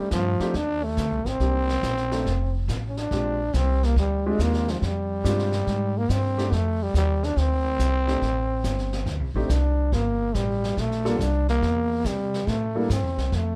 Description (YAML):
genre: jazz, small-group swing and bop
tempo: 141 BPM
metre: 4/4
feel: swing 68% on 8ths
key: F mixolydian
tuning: A4 = 441 Hz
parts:
  - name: growling trombone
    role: melody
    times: 0.0-13.6 s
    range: F3 to D4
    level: -28 LUFS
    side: equal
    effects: none
  - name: warm baby grand piano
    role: accompaniment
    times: 0.0-12.9 s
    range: G3 to A4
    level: -31 LUFS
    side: equal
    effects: none
  - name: upright bass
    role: bass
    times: 0.1-13.6 s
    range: F1 to C3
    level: -27 LUFS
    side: equal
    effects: none
  - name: jazz brush drum kit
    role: drums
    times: 0.1-13.6 s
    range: brushed snare drum, hi-hat, kick drum, snare drum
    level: -36 LUFS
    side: equal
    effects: none
room: light reverb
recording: none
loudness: -24 LUFS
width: mono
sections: 0.0-13.6 A section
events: none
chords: 0.0 F13; 1.4 Cm7; 2.3 F; 3.1 Bb13; 6.5 F13; 9.9 Gm; 11.6 C13